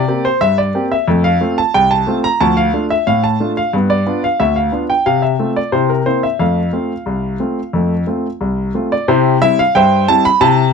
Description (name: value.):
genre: ragtime piano.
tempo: 90 BPM.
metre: 2/4.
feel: straight.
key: F major.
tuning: A4 = 440 Hz.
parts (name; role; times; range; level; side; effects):
clear grand piano; solo; 0.0-10.7 s; C2 to B5; -12 LUFS; equal; none.
room: light reverb.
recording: close, detailed microphones.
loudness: -12 LUFS.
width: side -6 dB against mid.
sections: 0.0-9.1 A section; 9.1-10.7 B section.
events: none.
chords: 0.0 C7; 1.1 F; 2.4 Dm; 3.7 G7; 5.1 F/C; 5.7 C7; 6.4 F; 9.1 C.